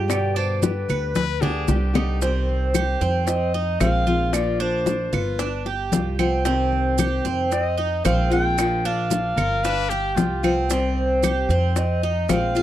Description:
latin, Cuban son and guajira; 113 BPM; 4/4; straight; C minor; A4 = 439 Hz
nylon-string guitar; accompaniment; 0.0-12.6 s; B2 to G4; -27 LUFS; left 3 dB
Cuban tres; arpeggios; 0.0-12.6 s; C4 to B4; -26 LUFS; right 4 dB; tape echo
upright bass; bass; 0.0-12.6 s; G1 to G2; -24 LUFS; right 1 dB
mellow clarinet; melody; 0.1-12.6 s; B4 to G5; -26 LUFS; left 1 dB
bongos; percussion; 0.1-12.6 s; -28 LUFS; left 6 dB
claves; percussion; 0.1-12.6 s; -32 LUFS; right 14 dB
congas; percussion; 0.1-12.6 s; -27 LUFS; left 2 dB
maracas; percussion; 0.1-12.6 s; -32 LUFS; right 16 dB
clear trumpet; second line; 1.2-2.2, 9.4-10.6 s; F4 to B4; -28 LUFS; left 10 dB
little or no reverb; dry, close 1970s-style studio recording; -19 LUFS; side -12 dB against mid
0.0-2.2 A section; 2.2-12.6 B section
drum fill 1.2-2.2
0.1 G; 2.2 Cm; 3.3 Fm7; 4.3 Bb; 5.4 G7; 6.5 Cm; 7.5 Fm7; 8.6 Bb; 9.6 G7; 10.7 Cm; 11.8 Fm7

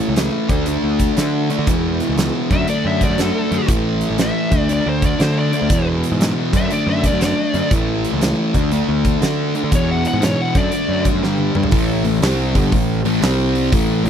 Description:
blues rock power trio and southern rock; 120 BPM; 4/4; swing 66% on 8ths; A4 = 441 Hz
thick fuzz guitar; riff; 0.0-14.1 s; E2 to D4; -19 LUFS; equal; distortion
fuzz picked electric bass; bass; 0.1-14.1 s; G1 to D3; -21 LUFS; equal; overdrive
huge arena drum kit; drums; 0.2-14.1 s; hi-hat, kick drum, snare drum, toms; -21 LUFS; equal
smooth overdriven lead guitar; melody; 2.5-11.0 s; A4 to F#5; -23 LUFS; left 2 dB
small room reverb; dry, close 1970s-style studio recording; -15 LUFS; side -8 dB against mid
0.0-11.7 A section; 11.7-14.1 B section
drum fill 11.2-11.7
0.4 D5; 1.7 E5; 2.4 D/F#; 3.7 A5; 4.4 D5; 5.7 E; 6.5 D/F#; 7.7 A; 8.5 D5; 9.7 E; 10.5 D/F#; 11.2 G5; 11.7 A5; 13.2 C5

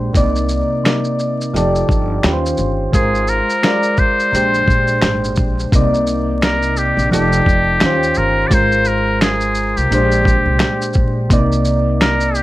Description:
lo-fi hip hop; 86 BPM; 4/4; swing 58% on 16ths; C minor; A4 = 440 Hz
soft electric-piano-like synth keys; accompaniment; 0.0-12.4 s; Bb2 to D5; -17 LUFS; equal; chorus, cassette tape, low-pass filter
upright bass; bass; 0.0-12.4 s; F1 to Eb2; -20 LUFS; equal
dusty soul sampler-style drum kit; drums; 0.1-12.4 s; finger snaps, hi-hat, kick drum, shaker, snare drum; -17 LUFS; equal
trumpet with metal mute; melody; 2.9-12.4 s; G4 to D5; -17 LUFS; left 1 dB; low-pass filter
moderate small room ambience, RT60 0.5 s; vinyl crackle; -13 LUFS; side -16 dB against mid
0.0-5.7 A section; 5.7-12.4 B section
break 0.0-2.9
0.1 Cm9; 1.5 F13; 2.2 Eb13; 2.9 Ab69; 4.3 Bb13; 5.7 Cm9; 7.1 F13; 7.8 Eb13; 8.5 Ab69; 9.9 Bb13; 11.3 Cm9

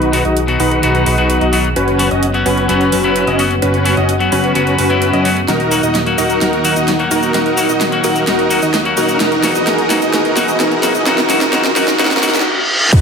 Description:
EDM, festival progressive house; 129 BPM; 4/4; straight; A4 = 445 Hz
lush unison pad; sustained chords; 0.0-13.0 s; C#3 to G#4; -22 LUFS; equal; chorus, sidechain pumping
dense compressed supersaw; riff; 0.0-13.0 s; C#4 to D#5; -15 LUFS; equal; sidechain pumping, low-pass filter, ping-pong delay
fat analog bass; bass; 0.0-13.0 s; D#1 to F#2; -22 LUFS; equal; sidechain pumping
big-room dance drum kit; drums; 0.0-13.0 s; cabasa, crash cymbal, hi-hat, snare drum; -19 LUFS; right 1 dB
riser, reverse cymbal and impact; sound effects; 3.2-13.0 s; -22 LUFS; right 1 dB
clean electric guitar; accompaniment; 0.1-12.3 s; B2 to F#4; -18 LUFS; left 3 dB; sidechain pumping, ping-pong delay
electronic kick drum; drums; 12.9-13.0 s; -7 LUFS; equal
wet recital hall reverb, RT60 1.3 s; high-pass filter; -11 LUFS; side -6 dB against mid
0.0-12.9 A section
build-up 0.0-12.9; filter sweep on supersaw synth 0.0-12.9; filter sweep on analog synth pad 0.0-12.9; filter sweep 0.0-12.9; drum fill 5.5-12.5; reverse cymbal 12.0-12.9
0.0 B; 1.8 F#sus4; 5.5 D#m; 9.2 E

